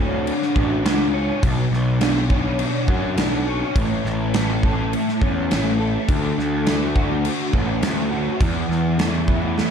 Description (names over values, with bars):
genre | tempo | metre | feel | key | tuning
rock, shoegaze and dream pop | 103 BPM | 4/4 | straight | D major | A4 = 440 Hz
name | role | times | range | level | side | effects
fuzz guitar | riff | 0.0-9.7 s | E2 to C#5 | -21 LUFS | equal | distortion, ensemble chorus
fuzz picked electric bass | bass | 0.0-9.6 s | A1 to F#2 | -24 LUFS | equal | overdrive
gated 80s drum kit | drums | 0.3-9.7 s | crash cymbal, kick drum, snare drum | -23 LUFS | equal | none
room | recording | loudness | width
light reverb, small room ambience | dark, warm production | -18 LUFS | side -7 dB against mid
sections
0.0-9.7 A section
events
none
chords
0.0 Dmaj7; 1.4 Bmadd9; 3.8 A; 6.1 Dmaj7; 8.4 Esus4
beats
0.27 0.85 | 1.43 2.01 2.60 3.18 | 3.76 4.34 4.92 5.50 | 6.08 6.66 7.24 7.82 | 8.40 8.98 9.56